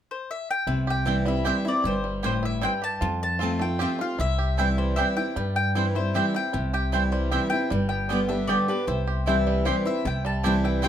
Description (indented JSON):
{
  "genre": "bluegrass",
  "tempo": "154 BPM",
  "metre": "3/4",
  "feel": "straight",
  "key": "C major",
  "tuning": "A4 = 441 Hz",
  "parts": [
    { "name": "mandolin", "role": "melody", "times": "0.1-10.9 s", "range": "B4 to A5", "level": "-29 LUFS", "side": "left 2 dB", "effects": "none" },
    { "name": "bluegrass banjo", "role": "melody", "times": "0.7-10.9 s", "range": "G3 to G4", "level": "-34 LUFS", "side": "right 4 dB", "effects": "none" },
    { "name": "picked steel-string acoustic guitar", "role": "accompaniment", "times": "0.7-10.9 s", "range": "F2 to G4", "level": "-26 LUFS", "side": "equal", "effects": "none" },
    { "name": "upright bass", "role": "bass", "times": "0.7-10.9 s", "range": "G1 to G2", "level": "-28 LUFS", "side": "equal", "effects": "none" },
    { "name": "mandolin", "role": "stabs", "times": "1.1-10.9 s", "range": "B3 to A5", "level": "-29 LUFS", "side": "right 5 dB", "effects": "none" },
    { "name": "lap resonator guitar", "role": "second line", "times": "9.3-10.0 s", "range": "C5 to E5", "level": "-28 LUFS", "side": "left 7 dB", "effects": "none" }
  ],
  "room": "moderate small room reverb, RT60 0.6 s",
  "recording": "none",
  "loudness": "-22 LUFS",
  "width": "side -10 dB against mid",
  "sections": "0.7-10.0 A section",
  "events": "none",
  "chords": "0.0 N.C.; 0.7 C; 3.0 F; 4.2 C; 7.7 G; 8.9 C"
}